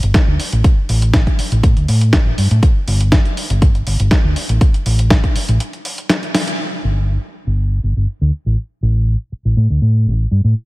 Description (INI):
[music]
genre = filtered disco house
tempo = 121 BPM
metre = 4/4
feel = straight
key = unclear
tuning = A4 = 440 Hz
[part]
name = hollow-body short-scale fingered electric bass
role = bass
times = 0.0-10.5 s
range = G1 to A2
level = -14 LUFS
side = equal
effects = sidechain pumping, low-pass filter
[part]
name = dusty soul sampler-style drum kit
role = drums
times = 0.0-6.6 s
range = hi-hat, snare drum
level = -20 LUFS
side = equal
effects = sidechain pumping on hats, low-pass filter on hats, low-pass filter on snare, low-pass filter on room
[part]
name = electronic kick drum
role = drums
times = 0.1-5.3 s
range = none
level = -13 LUFS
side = equal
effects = none
[sound]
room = little or no reverb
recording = none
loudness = -13 LUFS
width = side -20 dB against mid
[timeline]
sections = 0.0-6.6 A section; 6.6-10.7 B section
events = filter sweep on fingered electric bass 0.0-6.6, 6.6-10.7; break 5.6-6.6; drum fill 6.3; band accent 6.3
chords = none